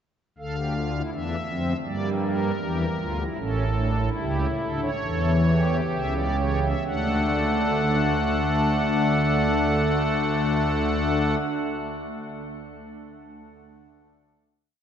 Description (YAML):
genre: classical, baroque-style 3-part fugue for pipe organ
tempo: 62-82 BPM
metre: 4/4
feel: straight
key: unclear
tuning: A4 = 440 Hz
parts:
  - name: pipe organ, strings celeste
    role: solo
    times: 0.4-11.4 s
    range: A1 to F#5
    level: -22 LUFS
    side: equal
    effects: none
room: wet cathedral reverb, RT60 6.0 s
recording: dark, warm production, nothing above 7.8 kHz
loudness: -22 LUFS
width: side -8 dB against mid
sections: 0.4-6.9 exposition; 6.9-10.7 final chord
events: slowing down 0.4-8.8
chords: 0.4 Dm; 1.9 Gm; 3.4 A7; 6.9 D